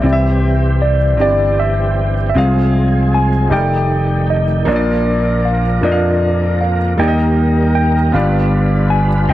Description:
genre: slow gospel.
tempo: 52 BPM (dotted quarters).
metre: 6/8.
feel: straight.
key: unclear.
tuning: A4 = 444 Hz.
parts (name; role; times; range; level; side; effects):
mellow tine electric piano; melody; 0.0-9.3 s; D5 to Ab5; -19 LUFS; equal; overdrive, medium stereo tremolo.
clear baby grand piano; accompaniment; 0.0-9.3 s; G2 to F5; -19 LUFS; left 2 dB; none.
overdriven tonewheel organ; sustained chords; 0.0-9.3 s; Eb3 to C5; -22 LUFS; right 3 dB; fast rotary speaker, chorus vibrato.
vintage slap bass; bass; 0.0-9.3 s; F1 to F2; -14 LUFS; equal; none.
room: light reverb.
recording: none.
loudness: -12 LUFS.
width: side -14 dB against mid.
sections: 0.0-9.3 A section.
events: none.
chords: 0.0 C; 2.4 Fm/C; 3.5 F13; 4.7 Bb; 7.0 Eb; 8.1 G7.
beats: | 0.04 1.20 | 2.36 3.52 | 4.67 5.83 | 6.99 8.14 | 9.30.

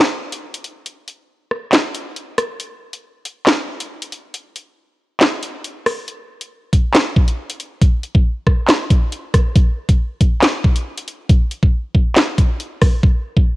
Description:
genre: hip hop.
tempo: 138 BPM.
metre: 4/4.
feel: half-time.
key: none.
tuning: none.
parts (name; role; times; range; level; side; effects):
drill drum kit; drums; 0.3-13.5 s; handclaps, hi-hat, kick drum, rim click, snare drum; -14 LUFS; equal; cassette tape.
room: little or no reverb.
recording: home recording on cassette.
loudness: -14 LUFS.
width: side -19 dB against mid.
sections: 0.0-13.6 A section.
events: break 0.0-6.1, 6.1-6.5; hi-hats muted 13.0-13.6.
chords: none.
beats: 0.42 | 0.86 1.29 1.73 2.16 | 2.60 3.03 3.47 3.90 | 4.34 4.77 5.21 5.64 | 6.08 6.51 6.95 7.38 | 7.82 8.25 8.69 9.12 | 9.56 9.99 10.43 10.86 | 11.29 11.73 12.16 12.60 | 13.03.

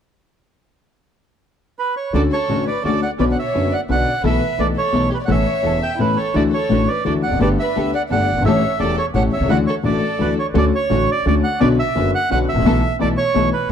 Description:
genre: tango.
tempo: 171 BPM.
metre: 3/4.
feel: rubato.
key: D major.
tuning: A4 = 439 Hz.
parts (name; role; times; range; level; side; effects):
bandoneon; melody; 1.8-13.7 s; B4 to G5; -21 LUFS; right 5 dB; tape echo.
warm concert grand piano; accompaniment; 2.1-13.5 s; E1 to A4; -19 LUFS; left 5 dB; none.
warm symphonic string section; stabs; 2.1-13.5 s; B3 to B4; -28 LUFS; right 6 dB; none.
upright bass; bass; 2.1-13.7 s; E1 to D2; -23 LUFS; right 2 dB; none.
warm chamber violin section; second line; 2.2-10.3 s; E4 to E5; -26 LUFS; left 2 dB; none.
room: studio reverb.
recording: dry, close 1970s-style studio recording.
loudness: -16 LUFS.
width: side -8 dB against mid.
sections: 1.1-2.1 A section; 2.1-10.6 B section; 10.6-13.7 B section.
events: none.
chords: 1.1 N.C.; 2.1 Dmaj7; 3.2 Bmadd9; 4.2 Esus4/B; 5.3 Aadd9; 6.3 Dadd9; 7.4 Gadd9; 8.4 A7; 9.5 Dadd9; 10.6 Dmaj7; 11.6 Bmadd9; 12.6 Esus4/B.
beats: | 1.08 1.43 1.78 | 2.13 2.49 2.84 | 3.19 3.54 3.89 | 4.24 4.58 4.93 | 5.28 5.64 5.99 | 6.35 6.70 7.05 | 7.40 7.75 8.10 | 8.45 8.80 9.15 | 9.49 9.85 10.20 | 10.55 10.91 11.26 | 11.61 11.96 12.30 | 12.65 12.99 13.34 | 13.69.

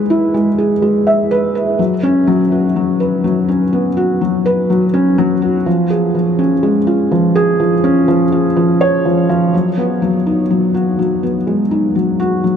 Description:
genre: electronica.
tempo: 124 BPM.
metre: 4/4.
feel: straight.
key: unclear.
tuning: A4 = 438 Hz.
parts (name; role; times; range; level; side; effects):
felt-muted upright piano; solo; 0.0-12.6 s; E#3 to E5; -12 LUFS; equal; none.
room: moderate huge ambient reverb, RT60 8.2 s.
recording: dark, warm production.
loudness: -12 LUFS.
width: side -8 dB against mid.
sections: 0.0-9.5 A section; 9.5-12.6 B section.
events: none.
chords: none.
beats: 0.34 0.82 1.31 | 1.79 2.28 2.76 3.24 | 3.73 4.21 4.70 5.18 | 5.66 6.15 6.63 7.11 | 7.60 8.08 8.57 9.05 | 9.53 10.02 10.50 10.98 | 11.47 11.95 12.44.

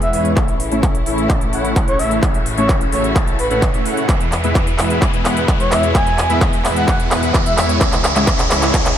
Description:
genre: EDM, festival progressive house.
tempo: 129 BPM.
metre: 4/4.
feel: straight.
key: E major.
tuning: A4 = 440 Hz.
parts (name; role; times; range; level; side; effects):
breathy flute-like synth lead; melody; 0.0-7.7 s; B4 to G#5; -22 LUFS; equal; chorus, digital delay.
clear studio string section; sustained chords; 0.0-9.0 s; B2 to G#4; -26 LUFS; left 3 dB; sidechain pumping, low-pass filter.
dense compressed supersaw; riff; 0.0-8.9 s; G#3 to A5; -20 LUFS; equal; cassette tape, sidechain pumping, low-pass filter, digital delay.
detuned saw bass; bass; 0.0-8.9 s; A1 to A2; -24 LUFS; equal; tube saturation, sidechain pumping.
big-room dance drum kit; drums; 0.0-8.9 s; handclaps, hi-hat; -21 LUFS; equal; overdrive.
riser; sound effects; 1.0-9.0 s; none; -26 LUFS; right 1 dB; none.
electronic kick drum; drums; 0.4-8.8 s; none; -17 LUFS; equal; overdrive.
room: light reverb.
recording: none.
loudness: -13 LUFS.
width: side -10 dB against mid.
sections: 0.0-9.0 A section.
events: build-up 0.0-9.0; drum fill 0.0-9.0; filter sweep on supersaw synth 0.0-9.0; riser 1.0-9.0.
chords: 0.4 A; 4.1 E; 7.8 C#m.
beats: | 0.37 0.83 1.30 1.76 | 2.23 2.69 3.16 3.62 | 4.09 4.55 5.02 5.48 | 5.95 6.41 6.88 7.34 | 7.81 8.27 8.74.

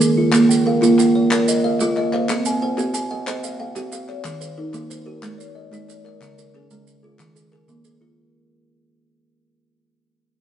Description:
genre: southern african traditional, mbira-style interlocking cycle.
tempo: 122 BPM (dotted quarters).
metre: 12/8.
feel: straight.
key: unclear.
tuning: A4 = 440 Hz.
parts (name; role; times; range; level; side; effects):
kalimba; arpeggios; 0.0-8.3 s; Db3+43c to Ab5+29c; -22 LUFS; left 2 dB; none.
kalimba; arpeggios; 0.0-8.3 s; Db3+43c to G5-43c; -19 LUFS; right 3 dB; none.
maracas; percussion; 0.0-8.0 s; none; -30 LUFS; right 5 dB; none.
group handclap; percussion; 0.3-7.6 s; none; -28 LUFS; left 3 dB; none.
room: light reverb.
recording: band playing live in one room, nothing above 10.7 kHz.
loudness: -16 LUFS.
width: side -10 dB against mid.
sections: 0.0-8.2 A section.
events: fade-out 0.0-8.2.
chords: 0.3 Bbm; 2.3 Cm; 4.3 Eb; 5.2 Ab; 6.2 Db; 7.2 Eb5.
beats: | 0.34 0.83 1.32 1.81 | 2.30 2.79 3.28 3.77 | 4.26 4.75 5.24 5.73 | 6.22 6.71 7.20 7.69.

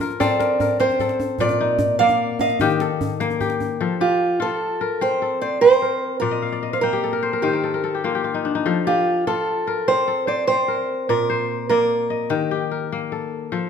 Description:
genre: west african traditional, West African string and xylophone music.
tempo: 99 BPM (dotted quarters).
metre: 12/8.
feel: straight.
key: F mixolydian.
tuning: A4 = 441 Hz.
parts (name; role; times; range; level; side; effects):
kora; arpeggios; 0.0-13.7 s; Bb2 to G5; -22 LUFS; left 7 dB; none.
djembe; percussion; 0.0-3.7 s; none; -27 LUFS; right 2 dB; none.
fingerpicked acoustic archtop guitar; melody; 0.2-12.9 s; F4 to F5; -19 LUFS; right 4 dB; none.
room: moderate recital hall reverb, RT60 1.4 s.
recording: minimal, uncompressed stereo recording.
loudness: -18 LUFS.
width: side -7 dB against mid.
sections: 0.0-3.8 A section; 3.8-13.7 B section.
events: steel-string acoustic guitar solo 0.0-3.8; kora fill 6.2-8.7.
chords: 0.0 F; 1.4 Bb; 2.6 Eb; 3.8 F; 6.2 N.C.; 7.4 Eb; 8.7 F; 11.1 Bb; 12.3 Eb.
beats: 0.20 0.80 | 1.40 2.00 2.60 3.20 | 3.80 4.41 5.01 5.62 | 6.22 6.83 7.44 8.05 | 8.65 9.26 9.87 10.48 | 11.09 11.70 12.30 12.91 | 13.52.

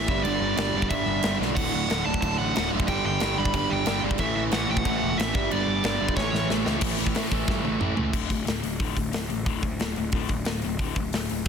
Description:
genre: punk rock.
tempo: 182 BPM.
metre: 4/4.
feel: straight.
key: D major.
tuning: A4 = 440 Hz.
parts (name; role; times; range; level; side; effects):
dark smooth lead guitar; melody; 0.0-6.5 s; C#5 to B5; -29 LUFS; right 1 dB; overdrive, ping-pong delay.
distorted electric guitar; riff; 0.0-8.1 s; D2 to A3; -29 LUFS; right 17 dB; distortion.
overdriven electric guitar; riff; 0.0-11.4 s; D2 to A3; -30 LUFS; left 14 dB; none.
fuzz picked electric bass; bass; 0.0-11.5 s; D1 to A2; -31 LUFS; equal; overdrive.
big rock drum kit; drums; 0.1-11.5 s; crash cymbal, hi-hat, kick drum, snare drum, toms; -28 LUFS; equal; none.
room: little or no reverb.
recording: dense, heavily limited modern master.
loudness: -23 LUFS.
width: side -7 dB against mid.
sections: 0.0-6.8 A section; 6.8-8.1 B section; 8.1-11.5 C section.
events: drum fill 1.4, 6.2-6.8, 7.5-8.1.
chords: 0.1 G5; 1.6 D; 2.9 G5; 4.2 A5; 5.3 G5; 6.2 A; 6.8 A5; 8.1 D5.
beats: | 0.25 0.58 0.91 1.24 | 1.57 1.90 2.22 2.55 | 2.88 3.21 3.54 3.87 | 4.20 4.53 4.85 5.18 | 5.51 5.84 6.17 6.50 | 6.83 7.16 7.49 7.82 | 8.15 8.48 8.81 9.14 | 9.47 9.80 10.13 10.46 | 10.79 11.12 11.45.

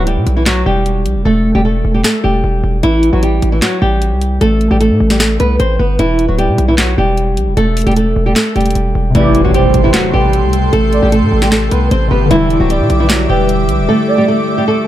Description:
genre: hip hop, trap.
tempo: 152 BPM.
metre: 4/4.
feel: half-time.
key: A dorian.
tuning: A4 = 438 Hz.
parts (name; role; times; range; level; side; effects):
flamenco guitar; melody; 0.0-14.9 s; E3 to C5; -14 LUFS; equal; low-pass filter, digital delay.
hard-hitting 808-style bass; bass; 0.0-13.9 s; D1 to B2; -14 LUFS; equal; none.
trap drum kit; drums; 0.1-13.8 s; handclaps, hi-hat, snare drum; -18 LUFS; equal; none.
warbly lo-fi synth keys; accompaniment; 9.1-14.9 s; C3 to G4; -18 LUFS; left 3 dB; chorus, low-pass filter.
airy breathy pad; sustained chords; 9.1-14.9 s; G4 to D6; -21 LUFS; equal; chorus.
impact; sound effects; 9.1-10.7 s; none; -20 LUFS; equal; none.
gliding portamento lead; second line; 9.2-14.3 s; B4 to E5; -19 LUFS; right 5 dB; chorus, digital delay.
room: digital ambience.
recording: dark, warm production.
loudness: -10 LUFS.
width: side -13 dB against mid.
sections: 0.0-9.1 A section; 9.1-14.9 B section.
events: hi-hats muted 1.3-2.8; impact 9.1-10.7; drums muted 13.9-14.9.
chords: 0.0 Em; 2.8 Am7; 6.0 Em; 9.1 Am7; 12.3 Em7.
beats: 0.07 0.47 0.86 | 1.25 1.65 2.04 2.44 | 2.83 3.23 3.62 4.02 | 4.41 4.81 5.20 5.60 | 5.99 6.39 6.78 7.17 | 7.57 7.96 8.36 8.75 | 9.15 9.54 9.94 10.33 | 10.73 11.12 11.52 11.91 | 12.31 12.70 13.10 13.49 | 13.89 14.28 14.68.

